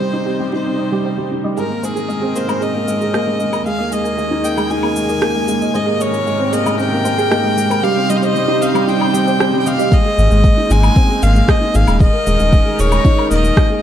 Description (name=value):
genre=piano and strings electronica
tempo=115 BPM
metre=4/4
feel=straight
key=Ab major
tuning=A4 = 440 Hz
part: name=clear violin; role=melody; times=0.0-13.8 s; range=Ab4 to Ab5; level=-20 LUFS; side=left 1 dB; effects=tape echo
part: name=rich chamber string section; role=sustained chords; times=0.0-13.8 s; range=Eb2 to C5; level=-23 LUFS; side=left 2 dB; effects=sidechain pumping
part: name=felt-muted upright piano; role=riff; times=0.0-13.8 s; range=G3 to Eb5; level=-18 LUFS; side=right 1 dB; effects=tape echo
part: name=soft round pluck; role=arpeggios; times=0.1-9.8 s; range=G4 to Ab5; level=-24 LUFS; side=right 5 dB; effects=chorus, sidechain pumping, tape echo
part: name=electronic shaker, woodblock and rim click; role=drums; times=1.6-13.7 s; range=none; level=-23 LUFS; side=equal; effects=none
part: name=electronic kick drum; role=drums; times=9.9-13.7 s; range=none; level=-12 LUFS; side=equal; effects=none
part: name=warm sub bass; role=bass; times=10.2-13.5 s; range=Eb1 to Ab1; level=-14 LUFS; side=equal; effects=sidechain pumping
room=moderate scoring stage reverb, RT60 1.8 s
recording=dark, warm production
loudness=-13 LUFS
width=side -10 dB against mid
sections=0.0-1.6 A section; 1.6-9.9 B section; 9.9-13.8 C section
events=build-up 1.6-9.9; drop 9.9-13.8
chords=0.0 Cm; 1.6 Abadd9; 3.7 Ebsus4; 5.7 Abadd9; 7.8 Cm; 9.9 Abadd9; 12.0 Ebsus4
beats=0.01 0.53 1.05 | 1.57 2.09 2.62 3.14 | 3.66 4.18 4.70 5.22 | 5.75 6.27 6.79 7.31 | 7.83 8.35 8.88 9.40 | 9.92 10.44 10.96 11.48 | 12.01 12.53 13.05 13.57